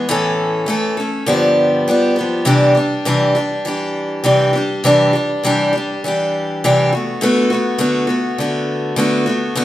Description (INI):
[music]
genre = rock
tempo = 102 BPM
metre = 4/4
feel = straight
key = unclear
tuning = A4 = 438 Hz
[part]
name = picked steel-string acoustic guitar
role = solo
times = 0.0-9.6 s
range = G2 to A4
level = -14 LUFS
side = equal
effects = none
[sound]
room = moderate large studio reverb, RT60 1.0 s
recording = band playing live in one room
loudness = -14 LUFS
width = side -14 dB against mid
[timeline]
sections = 0.0-2.5 A section; 2.5-9.6 B section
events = none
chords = 0.1 A; 1.3 G7; 2.5 Cadd9; 6.9 D6